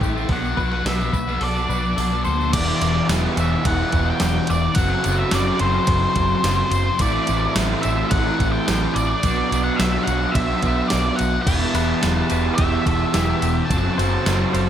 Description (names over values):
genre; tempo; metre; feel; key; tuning
rock, shoegaze and dream pop; 107 BPM; 4/4; straight; E minor; A4 = 438 Hz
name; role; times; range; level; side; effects
direct-recorded clean electric guitar; arpeggios; 0.0-2.5, 11.7-14.7 s; G4 to C5; -31 LUFS; left 4 dB; wide subtle chorus, tape echo
raw garage guitar; riff; 0.0-14.7 s; B2 to B4; -25 LUFS; right 6 dB; overdrive, reverse reverb
thick fuzz guitar; riff; 0.0-14.7 s; E2 to B3; -24 LUFS; left 4 dB; distortion, wide subtle chorus
vintage muted fingered electric bass; bass; 0.0-14.7 s; E1 to D2; -24 LUFS; equal; none
gated 80s digital drum machine; drums; 0.0-14.7 s; crash cymbal, hi-hat, kick drum, ride cymbal, snare drum; -25 LUFS; right 1 dB; gated reverb, gated reverb snare
tambourine; percussion; 0.0-14.7 s; none; -39 LUFS; right 8 dB; none
octave-fuzz lead guitar; melody; 0.3-14.7 s; C5 to A5; -25 LUFS; left 1 dB; distortion, tape echo
room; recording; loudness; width
moderate studio reverb, RT60 0.5 s; none; -17 LUFS; side -10 dB against mid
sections
0.0-2.5 A section; 2.5-14.7 B section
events
kick and snare drop out 1.4-2.5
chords
0.3 Bm7; 2.5 Em7; 4.8 F#dim; 7.0 Am; 9.2 Bm; 11.5 Em; 13.7 F#dim